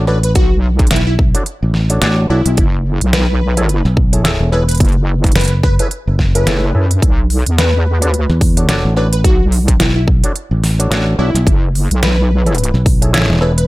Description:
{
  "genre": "glitch hop",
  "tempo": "108 BPM",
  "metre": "4/4",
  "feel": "swing 58% on 16ths",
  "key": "B dorian",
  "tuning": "A4 = 440 Hz",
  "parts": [
    { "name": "auto-wah clav", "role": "stabs", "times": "0.0-13.5 s", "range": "D4 to C#5", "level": "-21 LUFS", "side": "equal", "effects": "overdrive, sidechain pumping, digital delay" },
    { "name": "fingered electric bass", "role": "bass", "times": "0.0-13.7 s", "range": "E1 to E2", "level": "-14 LUFS", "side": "equal", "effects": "tube saturation" },
    { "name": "plucky unison lead", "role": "melody", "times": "0.1-13.7 s", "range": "E4 to B4", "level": "-21 LUFS", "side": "left 1 dB", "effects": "digital delay" },
    { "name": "dubstep drum kit", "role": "drums", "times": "0.1-13.7 s", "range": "hi-hat, snare drum", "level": "-18 LUFS", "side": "equal", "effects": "none" },
    { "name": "wobble bass", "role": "bass", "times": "0.4-12.7 s", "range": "F#1 to F#2", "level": "-13 LUFS", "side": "equal", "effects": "chorus" },
    { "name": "electronic kick drum", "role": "drums", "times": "0.4-13.0 s", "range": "none", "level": "-13 LUFS", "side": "equal", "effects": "none" }
  ],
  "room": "little or no reverb",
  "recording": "none",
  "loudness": "-11 LUFS",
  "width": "side -19 dB against mid",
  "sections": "0.0-13.7 A section",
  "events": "none",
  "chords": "0.0 Bm9; 2.6 F#m7; 7.0 Bm9; 11.5 F#m7"
}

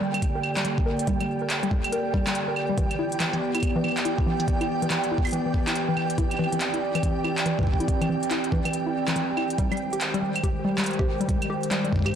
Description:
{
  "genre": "IDM",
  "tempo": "141 BPM",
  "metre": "4/4",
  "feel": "swing 62% on 16ths",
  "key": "unclear",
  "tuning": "A4 = 439 Hz",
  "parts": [
    { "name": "warbly tape-like pad", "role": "sustained chords", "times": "0.0-12.2 s", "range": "D3 to D5", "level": "-29 LUFS", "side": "equal", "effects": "chorus, built-in reverb" },
    { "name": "warbly dusty pluck", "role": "arpeggios", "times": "0.0-12.1 s", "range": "E3 to Bb4", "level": "-29 LUFS", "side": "left 2 dB", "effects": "chorus, tape echo" },
    { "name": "flickering grainy texture", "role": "texture", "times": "0.0-12.2 s", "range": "G5", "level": "-32 LUFS", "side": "right 5 dB", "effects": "built-in reverb, sidechain pumping" },
    { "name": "organic electronic drum kit", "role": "drums", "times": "0.1-12.1 s", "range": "claves, handclaps, hi-hat", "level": "-30 LUFS", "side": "right 1 dB", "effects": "overdrive, digital delay" },
    { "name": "electronic kick drum", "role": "drums", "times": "0.2-12.1 s", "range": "none", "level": "-26 LUFS", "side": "equal", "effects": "none" }
  ],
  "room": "moderate echo chamber reverb, RT60 2.0 s",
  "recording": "blown-out, overdriven recording, overdrive",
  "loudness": "-23 LUFS",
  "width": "side -8 dB against mid",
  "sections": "0.0-12.2 A section",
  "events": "none",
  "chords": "0.0 Gm; 2.8 Em7; 6.2 Cadd9; 9.6 Abmaj7"
}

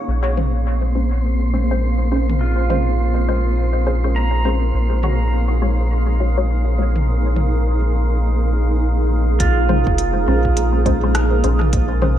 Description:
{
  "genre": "ambient dub",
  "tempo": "103 BPM",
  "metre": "4/4",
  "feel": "swing 60% on 16ths",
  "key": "Bb minor",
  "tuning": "A4 = 441 Hz",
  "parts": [
    { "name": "granular cloud pad", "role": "sustained chords", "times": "0.0-12.2 s", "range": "Bb3 to Bb4", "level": "-24 LUFS", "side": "right 1 dB", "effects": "built-in reverb" },
    { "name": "wind-like tuned noise texture", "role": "texture", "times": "0.0-9.4 s", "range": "C4 to C6", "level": "-30 LUFS", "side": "equal", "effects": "built-in reverb" },
    { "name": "soft dub sub bass", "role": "bass", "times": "0.1-12.2 s", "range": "F1 to Bb1", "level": "-17 LUFS", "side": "equal", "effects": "none" },
    { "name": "filtered dub chord stab", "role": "stabs", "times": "0.4-12.2 s", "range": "Ab3 to Db5", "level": "-25 LUFS", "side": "left 2 dB", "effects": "phaser, wide subtle chorus, dub echo" },
    { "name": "organic electronic drum kit", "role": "drums", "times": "0.4-12.2 s", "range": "hi-hat, rim click, toms", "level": "-27 LUFS", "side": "equal", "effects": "studio reverb, dub echo" },
    { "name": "pedal steel guitar", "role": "arpeggios", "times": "2.4-12.1 s", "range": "F4 to Bb5", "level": "-25 LUFS", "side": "right 7 dB", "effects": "low-pass filter, tape echo" },
    { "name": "electronic kick drum", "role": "drums", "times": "9.4-11.9 s", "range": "none", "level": "-22 LUFS", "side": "equal", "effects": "studio reverb" }
  ],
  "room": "little or no reverb",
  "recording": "none",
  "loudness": "-15 LUFS",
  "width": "side -11 dB against mid",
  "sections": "0.1-9.4 A section; 9.4-12.2 B section",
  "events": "none",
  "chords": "0.1 Bbm9; 4.7 Ab7sus4/Bb; 9.4 Bbm9"
}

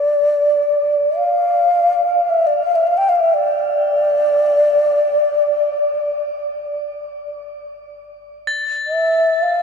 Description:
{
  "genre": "world meditative, free-time meditation music",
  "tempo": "free time",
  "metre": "none",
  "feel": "none",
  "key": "D minor",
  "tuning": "A4 = 440 Hz",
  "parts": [
    { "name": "mellow low xiao", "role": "melody", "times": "0.0-9.6 s", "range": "D5 to G5", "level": "-15 LUFS", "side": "equal", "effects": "shimmer reverb" },
    { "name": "crotales", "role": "texture", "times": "8.5-9.6 s", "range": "A6", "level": "-20 LUFS", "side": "left 3 dB", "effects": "shimmer reverb" }
  ],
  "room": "wet huge ambient reverb, RT60 6.2 s",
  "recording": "dark, warm production",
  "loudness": "-14 LUFS",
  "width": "side -6 dB against mid",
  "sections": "0.0-7.7 A section; 7.7-9.6 A section",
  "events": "none",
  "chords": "none"
}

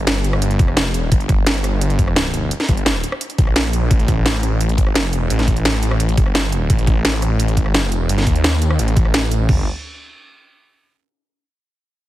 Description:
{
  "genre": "dark technical drum and bass",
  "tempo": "172 BPM",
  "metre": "4/4",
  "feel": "straight",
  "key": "G minor",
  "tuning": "A4 = 440 Hz",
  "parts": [
    { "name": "snarling distorted saw bass", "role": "bass", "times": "0.0-9.7 s", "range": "F1 to Eb2", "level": "-18 LUFS", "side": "equal", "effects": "distortion, overdrive" },
    { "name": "drum and bass drum kit", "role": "drums", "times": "0.1-9.4 s", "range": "hi-hat, rim click, snare drum", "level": "-20 LUFS", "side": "equal", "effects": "overdrive, small room ambience" },
    { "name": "drum and bass drum kit", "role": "drums", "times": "0.6-9.6 s", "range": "crash cymbal, kick drum, toms", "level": "-16 LUFS", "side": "equal", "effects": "overdrive, small room ambience" }
  ],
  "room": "little or no reverb",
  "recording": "heavily compressed radio sound",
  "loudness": "-15 LUFS",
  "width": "side -15 dB against mid",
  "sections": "0.0-9.5 A section; 9.5-10.9 B section",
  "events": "none",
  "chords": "none"
}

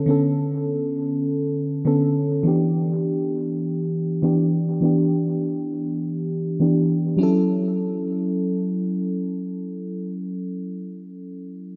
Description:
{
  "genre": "chillout",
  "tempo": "101 BPM",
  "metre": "4/4",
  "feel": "swing 55% on 16ths",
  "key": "A mixolydian",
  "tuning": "A4 = 439 Hz",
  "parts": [
    { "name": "mellow FM electric piano", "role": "accompaniment", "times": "0.0-11.8 s", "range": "D3 to A4", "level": "-23 LUFS", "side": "equal", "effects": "chorus, low-pass filter, tape echo" }
  ],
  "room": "moderate lush hall reverb, RT60 2.5 s",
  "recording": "none",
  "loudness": "-23 LUFS",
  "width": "mono",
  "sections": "0.0-7.2 A section; 7.2-9.6 B section",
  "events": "none",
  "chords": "0.0 Bm9/D; 2.4 Em7; 7.2 A6"
}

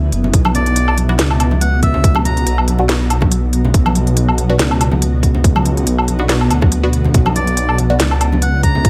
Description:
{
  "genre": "deep dubstep",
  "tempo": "141 BPM",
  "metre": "4/4",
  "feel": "swing 55% on 16ths, half-time",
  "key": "B harmonic minor",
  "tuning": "A4 = 439 Hz",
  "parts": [
    { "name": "granular cloud pad", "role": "sustained chords", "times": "0.0-8.9 s", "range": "B2 to F#4", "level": "-23 LUFS", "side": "equal", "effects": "built-in reverb" },
    { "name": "dark detuned saw bass", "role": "bass", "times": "0.0-8.9 s", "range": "F#1 to D2", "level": "-18 LUFS", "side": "equal", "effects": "none" },
    { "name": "garage drum kit", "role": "drums", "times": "0.1-8.9 s", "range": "hi-hat, snare drum, woodblock", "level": "-21 LUFS", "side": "equal", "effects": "none" },
    { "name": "congas", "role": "percussion", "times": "0.2-8.8 s", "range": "none", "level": "-25 LUFS", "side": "equal", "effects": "dub echo" },
    { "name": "electronic kick drum", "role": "drums", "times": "0.3-8.9 s", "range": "none", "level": "-15 LUFS", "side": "equal", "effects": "none" },
    { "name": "melodica", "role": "melody", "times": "0.6-2.6, 7.4-8.9 s", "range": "D5 to A#5", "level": "-25 LUFS", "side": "equal", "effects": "dub echo" },
    { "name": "filtered dub chord stab", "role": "stabs", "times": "1.1-8.0 s", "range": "B3 to F#4", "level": "-25 LUFS", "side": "equal", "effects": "phaser, dub echo" }
  ],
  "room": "light reverb",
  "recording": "none",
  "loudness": "-14 LUFS",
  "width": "mono",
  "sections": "0.0-8.9 A section",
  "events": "none",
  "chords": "0.0 Bm"
}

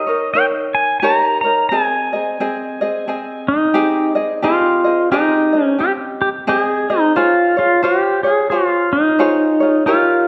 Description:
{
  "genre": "Hawaiian",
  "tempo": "88 BPM",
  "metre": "4/4",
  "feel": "swing 61% on 8ths",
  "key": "Ab major",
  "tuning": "A4 = 440 Hz",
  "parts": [
    { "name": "pedal steel guitar", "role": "melody", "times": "0.0-10.3 s", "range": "Eb4 to Bb5", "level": "-18 LUFS", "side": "equal", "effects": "none" },
    { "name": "tenor ukulele", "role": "accompaniment", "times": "0.0-10.3 s", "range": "C4 to Eb5", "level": "-21 LUFS", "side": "equal", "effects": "none" }
  ],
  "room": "wet recital hall reverb, RT60 1.6 s",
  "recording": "none",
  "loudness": "-16 LUFS",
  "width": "mono",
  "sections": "0.0-4.4 A section; 4.4-10.3 A section",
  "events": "none",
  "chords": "0.0 Eb7; 1.7 Abmaj7; 7.1 Dbmaj7"
}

